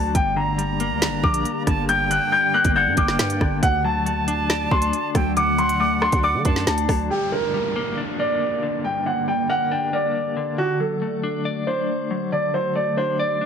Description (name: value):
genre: hip hop, drill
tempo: 138 BPM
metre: 4/4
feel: half-time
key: G harmonic minor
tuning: A4 = 443 Hz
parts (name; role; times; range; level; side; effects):
- dark grand piano; melody; 0.0-13.5 s; F#4 to G6; -22 LUFS; left 1 dB; ping-pong delay
- clean electric guitar; accompaniment; 0.0-13.5 s; G2 to D5; -27 LUFS; left 5 dB; tremolo
- glassy FM pad; sustained chords; 0.0-13.5 s; D3 to D5; -30 LUFS; right 1 dB; ensemble chorus, built-in reverb, phaser
- growling 808-style bass; bass; 0.0-7.1 s; G1 to D3; -26 LUFS; right 1 dB; none
- drill drum kit; drums; 0.1-7.0 s; hi-hat, kick drum, rim click, snare drum; -22 LUFS; right 1 dB; none
- breathy bright jazz flute; second line; 0.4-6.7 s; F#5 to Bb5; -27 LUFS; right 6 dB; ping-pong delay
- downlifter; sound effects; 7.1-10.6 s; none; -33 LUFS; right 1 dB; none
room: light reverb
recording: none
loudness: -19 LUFS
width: side -7 dB against mid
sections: 0.0-7.1 A section; 7.1-13.5 B section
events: none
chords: 0.1 Gm; 3.6 D; 7.1 Gm; 10.6 D